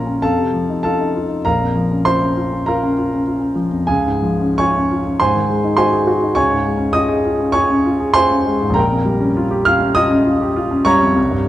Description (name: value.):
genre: classical, romantic character piece for solo piano.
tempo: 99 BPM.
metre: 4/4.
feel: uneven beats, rubato.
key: unclear.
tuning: A4 = 440 Hz.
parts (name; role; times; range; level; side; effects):
warm grand piano; solo; 0.0-11.5 s; Bb1 to F6; -14 LUFS; equal; none.
room: wet recital hall reverb, RT60 1.5 s.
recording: dark, warm production.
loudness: -14 LUFS.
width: side -13 dB against mid.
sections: 0.0-11.5 A section.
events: none.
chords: 0.2 F7; 1.4 Bbm; 3.9 Db; 5.2 Ab7; 6.4 Db; 8.8 Gm7b5/Bb.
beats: 0.22 0.84 | 1.44 2.04 2.68 3.28 | 3.89 4.59 5.20 5.77 | 6.36 6.95 7.55 8.16 | 8.76 9.37 9.97 10.56 | 11.17.